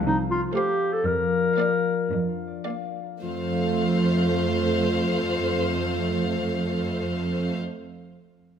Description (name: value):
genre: cinematic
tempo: 105-122 BPM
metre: 4/4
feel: straight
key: F major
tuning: A4 = 441 Hz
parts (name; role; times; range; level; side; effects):
- concert harp; arpeggios; 0.0-7.8 s; F3 to F5; -32 LUFS; left 12 dB; none
- warm symphonic cello section; bass; 0.0-7.6 s; C2 to F2; -27 LUFS; right 4 dB; none
- mellow clarinet; second line; 0.1-7.5 s; Eb4 to Bb4; -27 LUFS; left 1 dB; none
- warm chamber violin section; second line; 0.5-7.6 s; C5 to D5; -32 LUFS; left 3 dB; none
- rich studio viola section; accompaniment; 0.5-7.5 s; A3 to Bb3; -30 LUFS; right 4 dB; none
- clear chamber violin section; melody; 0.6-7.6 s; F5; -34 LUFS; left 4 dB; none
room: moderate scoring stage reverb, RT60 1.7 s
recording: none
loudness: -22 LUFS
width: side -8 dB against mid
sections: 0.0-3.2 A section; 3.2-7.8 B section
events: slowing down 0.0-3.2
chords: 0.0 F; 1.1 Bb/F; 3.2 F